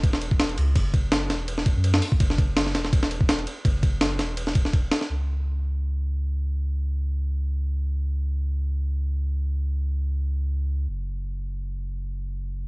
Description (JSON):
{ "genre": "drum and bass, jungle", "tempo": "166 BPM", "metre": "4/4", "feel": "swing 54% on 16ths", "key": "unclear", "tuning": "A4 = 440 Hz", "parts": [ { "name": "soft dub sub bass", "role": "bass", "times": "0.0-12.7 s", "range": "E1 to F#2", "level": "-25 LUFS", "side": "equal", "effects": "none" }, { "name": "breakbeat sampler-style drum kit", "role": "drums", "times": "0.0-5.1 s", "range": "hi-hat, kick drum, ride cymbal, snare drum", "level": "-22 LUFS", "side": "equal", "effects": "small room ambience" } ], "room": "little or no reverb", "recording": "home recording on cassette, nothing above 10.9 kHz", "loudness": "-23 LUFS", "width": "side -27 dB against mid", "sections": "0.0-5.1 A section; 5.1-12.7 B section", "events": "none", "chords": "none" }